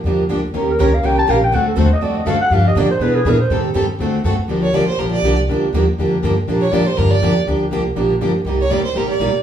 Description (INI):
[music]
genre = acoustic string swing (jazz manouche)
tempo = 242 BPM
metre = 4/4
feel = swing 55% on 8ths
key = G minor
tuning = A4 = 438 Hz
[part]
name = upright bass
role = bass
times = 0.0-9.4 s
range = G1 to B2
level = -20 LUFS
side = equal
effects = none
[part]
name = picked plugged-in steel-string acoustic guitar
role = accompaniment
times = 0.1-9.3 s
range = C3 to Bb4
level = -19 LUFS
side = left 2 dB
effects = none
[part]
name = picked steel-string acoustic guitar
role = accompaniment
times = 0.1-9.3 s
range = C3 to B4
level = -21 LUFS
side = right 5 dB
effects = none
[part]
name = growling clarinet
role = melody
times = 0.7-3.6 s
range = G#4 to A5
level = -18 LUFS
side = left 1 dB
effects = none
[part]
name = warm violin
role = second line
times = 4.6-9.3 s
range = Bb4 to D5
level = -20 LUFS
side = right 4 dB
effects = none
[sound]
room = wet studio reverb, RT60 0.6 s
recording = band playing live in one room, studio reverb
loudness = -14 LUFS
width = side -9 dB against mid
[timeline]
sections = 0.0-4.5 A section; 4.5-9.4 A section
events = clarinet solo 0.0-4.5; violin solo 4.5-9.4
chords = 0.0 Gm7; 0.5 Eb7; 1.5 D7#9; 2.5 Gm9; 3.0 E7; 3.5 Am7b5; 4.0 D7; 4.5 Gm7; 8.5 Cm9